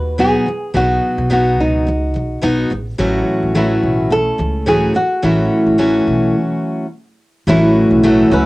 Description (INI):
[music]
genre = pop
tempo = 107 BPM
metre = 4/4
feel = swing 55% on 16ths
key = unclear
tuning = A4 = 440 Hz
[part]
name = flamenco guitar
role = melody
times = 0.0-8.5 s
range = D#4 to B4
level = -16 LUFS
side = equal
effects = cassette tape
[part]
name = picked steel-string acoustic guitar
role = accompaniment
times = 0.0-8.5 s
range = A2 to F#4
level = -15 LUFS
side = equal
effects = cassette tape
[part]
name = upright bass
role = bass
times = 0.0-8.5 s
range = A1 to D#2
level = -21 LUFS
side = equal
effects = none
[part]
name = granular cloud pad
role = sustained chords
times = 7.9-8.5 s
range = C#5 to E6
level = -25 LUFS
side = right 2 dB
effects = built-in reverb, cassette tape
[sound]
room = light reverb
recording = home recording on cassette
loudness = -13 LUFS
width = side -20 dB against mid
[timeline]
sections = 0.0-7.5 A section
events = stop 6.4-7.5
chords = 0.0 B; 3.0 F#m7/A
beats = 0.19 | 0.75 1.31 1.87 2.43 | 2.99 3.55 4.11 4.67 | 5.23 5.79 6.35 6.91 | 7.47 8.03